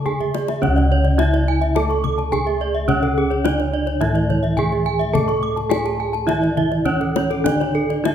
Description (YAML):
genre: Balinese gamelan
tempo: 106 BPM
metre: 4/4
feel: straight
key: C# pelog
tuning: A4 = 441 Hz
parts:
  - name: gamelan-type bronze metallophone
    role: melody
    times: 0.0-8.1 s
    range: C#4 to A4-20c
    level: -22 LUFS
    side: right 4 dB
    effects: none
  - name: gamelan-type bronze metallophone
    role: accompaniment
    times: 0.0-8.1 s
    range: C#3 to A3-20c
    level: -26 LUFS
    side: right 2 dB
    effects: none
  - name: gamelan-type bronze metallophone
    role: arpeggios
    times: 0.0-8.1 s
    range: A4-20c to C#6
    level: -25 LUFS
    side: left 5 dB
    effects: none
  - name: gamelan-type bossed gongs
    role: bass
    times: 0.0-8.1 s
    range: C#2 to A4-20c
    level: -22 LUFS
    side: left 1 dB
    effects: none
  - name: kendang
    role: percussion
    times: 0.1-8.1 s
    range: none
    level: -27 LUFS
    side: left 6 dB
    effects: none
  - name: gamelan-type bronze metallophone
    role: arpeggios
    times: 0.2-7.9 s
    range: G#4-30c to D6+20c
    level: -27 LUFS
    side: right 3 dB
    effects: none
room: wet recital hall reverb, RT60 1.7 s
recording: minimal, uncompressed stereo recording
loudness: -17 LUFS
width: side -9 dB against mid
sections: 0.6-8.1 A section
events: drum fill 0.1-0.6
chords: none